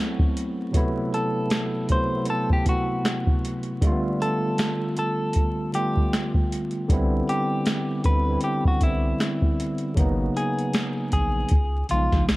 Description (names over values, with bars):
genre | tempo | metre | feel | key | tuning
lo-fi hip hop | 78 BPM | 4/4 | swing 58% on 16ths | unclear | A4 = 440 Hz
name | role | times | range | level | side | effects
tine electric piano | accompaniment | 0.0-12.4 s | C3 to F4 | -26 LUFS | equal | medium stereo tremolo, cassette tape
soft vintage rhythm box | drums | 0.2-12.4 s | hi-hat, kick drum, snare drum | -23 LUFS | equal | none
clean electric guitar | melody | 1.1-12.2 s | E4 to C5 | -28 LUFS | equal | none
soft dub sub bass | bass | 6.9-12.4 s | G#1 to D2 | -25 LUFS | equal | none
room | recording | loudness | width
light reverb, digital ambience | vinyl crackle | -21 LUFS | side -20 dB against mid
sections
0.7-12.4 A section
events
none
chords
0.0 Am69; 3.8 G9; 6.9 Cmaj9; 10.0 G#m11; 11.5 C#9